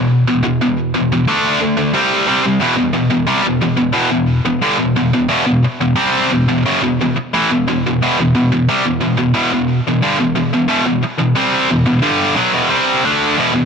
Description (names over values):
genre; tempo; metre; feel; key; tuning
metal; 89 BPM; 4/4; straight; E minor; A4 = 439 Hz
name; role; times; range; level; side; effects
tight distorted guitar; solo; 0.0-13.7 s; E2 to D4; -12 LUFS; equal; distortion, digital delay
room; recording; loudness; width
light reverb; dark, warm production; -12 LUFS; side -6 dB against mid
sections
0.0-2.6 A section; 2.6-13.7 B section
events
none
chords
0.0 E5; 1.3 D5; 2.0 C5; 2.6 Em